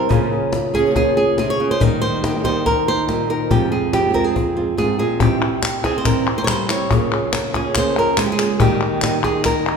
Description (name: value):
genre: flamenco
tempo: 141 BPM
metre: 4/4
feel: straight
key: unclear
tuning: A4 = 440 Hz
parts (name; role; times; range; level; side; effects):
- flamenco guitar; melody; 0.0-9.8 s; F2 to Db5; -18 LUFS; right 1 dB; none
- flamenco guitar; stabs; 0.0-9.8 s; F2 to Ab4; -23 LUFS; right 4 dB; none
- cajon; percussion; 0.1-9.7 s; none; -22 LUFS; left 4 dB; none
- palmas hand claps; percussion; 5.2-9.8 s; none; -23 LUFS; left 4 dB; none
room: wet recital hall reverb, RT60 1.5 s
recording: recorded in a church or concert hall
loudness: -16 LUFS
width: side -6 dB against mid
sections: 0.0-9.8 A section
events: none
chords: 0.1 Db6; 1.8 Eb; 3.5 Fmadd9; 5.2 C; 6.9 Db6; 8.6 Eb